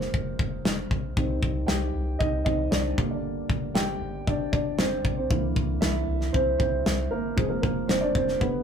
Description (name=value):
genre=piano-driven pop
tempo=116 BPM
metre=4/4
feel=straight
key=unclear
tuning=A4 = 440 Hz
part: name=dark upright piano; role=accompaniment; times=0.0-8.6 s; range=D3 to G5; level=-28 LUFS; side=right 2 dB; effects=none
part: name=round analog bass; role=bass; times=0.0-8.6 s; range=F1 to C2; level=-32 LUFS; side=equal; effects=none
part: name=modern studio drum kit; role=drums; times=0.0-8.5 s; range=kick drum, snare drum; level=-27 LUFS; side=left 1 dB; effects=none
room=moderate small room reverb, RT60 0.5 s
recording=rough rehearsal-room recording, warm saturation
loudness=-24 LUFS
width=side -7 dB against mid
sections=0.0-8.6 A section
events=upright piano solo 0.0-8.6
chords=0.0 Fm; 1.2 Cm; 3.0 Gm; 5.3 C7; 7.4 Fm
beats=0.14 0.65 | 1.17 1.69 2.20 2.72 | 3.24 3.75 4.27 4.79 | 5.31 5.82 6.34 6.86 | 7.37 7.89 8.41